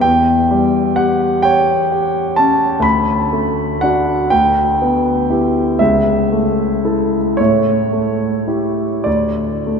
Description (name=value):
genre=classical, romantic nocturne for solo piano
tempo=33-44 BPM (dotted quarters)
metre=6/8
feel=rubato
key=D major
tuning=A4 = 439 Hz
part: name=warm concert grand piano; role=solo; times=0.0-9.8 s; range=C#2 to B5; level=-13 LUFS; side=equal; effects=none
room=wet cathedral reverb, RT60 5.6 s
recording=in a vast, echoing space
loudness=-13 LUFS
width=side -6 dB against mid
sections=0.0-9.8 A section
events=none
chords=0.0 C#dim/E; 2.8 D; 4.3 Em7/D; 5.8 A/C#; 7.4 A7; 9.1 D5